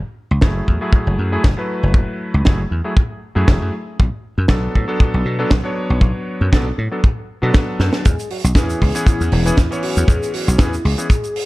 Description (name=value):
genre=nu-disco, nu disco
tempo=118 BPM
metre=4/4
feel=swing 54% on 16ths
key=E mixolydian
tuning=A4 = 442 Hz
part: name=dry thumbed slap bass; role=bass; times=0.3-10.9 s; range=E1 to B2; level=-18 LUFS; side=equal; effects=sidechain pumping
part: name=clear electric grand piano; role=accompaniment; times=0.4-11.1 s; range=E3 to C#5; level=-23 LUFS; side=equal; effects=low-pass filter, analog delay
part: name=kick drum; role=drums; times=0.4-11.2 s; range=none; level=-15 LUFS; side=equal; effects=none
part: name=tight funk drum kit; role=drums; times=0.4-11.5 s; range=hi-hat, shaker, snare drum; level=-23 LUFS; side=right 2 dB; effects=none
part: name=soft octave-layered synth lead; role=melody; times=8.0-11.5 s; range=E4 to G#4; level=-25 LUFS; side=left 2 dB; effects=chorus
room=studio ambience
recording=dark, warm production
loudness=-15 LUFS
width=side -19 dB against mid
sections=0.0-11.5 A section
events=drum fill 7.8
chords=0.0 F#m9; 3.7 Bm7; 8.1 E6